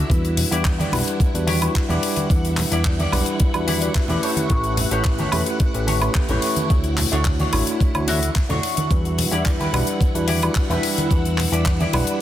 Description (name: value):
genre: nu-disco, nu disco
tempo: 109 BPM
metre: 4/4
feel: straight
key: E dorian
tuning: A4 = 440 Hz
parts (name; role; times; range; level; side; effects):
- string machine, full ensemble; sustained chords; 0.0-12.2 s; E4 to F#5; -30 LUFS; equal; ensemble chorus, sidechain pumping
- electric guitar with an envelope filter; riff; 0.0-12.2 s; D4 to E5; -28 LUFS; left 1 dB; lush chorus, analog delay
- fat analog bass; bass; 0.0-12.0 s; A1 to E2; -23 LUFS; equal; none
- tine electric piano; accompaniment; 0.1-12.2 s; G3 to F#5; -25 LUFS; equal; fast stereo tremolo, vintage 12-bit sampler grit, sidechain pumping, analog delay
- electronic kick drum; drums; 0.1-11.8 s; none; -20 LUFS; equal; none
- tight funk drum kit; drums; 0.1-12.2 s; handclaps, hi-hat, woodblock; -26 LUFS; left 1 dB; soft clipping on snare
- congas; percussion; 0.4-12.1 s; none; -28 LUFS; right 2 dB; none
room: light reverb, small room ambience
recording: dense, heavily limited modern master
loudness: -18 LUFS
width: side -12 dB against mid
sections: 0.0-12.2 A section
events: clean electric guitar fill 11.7-12.2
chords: 0.1 Em7; 4.2 A7; 6.7 Dmaj7; 8.9 Em7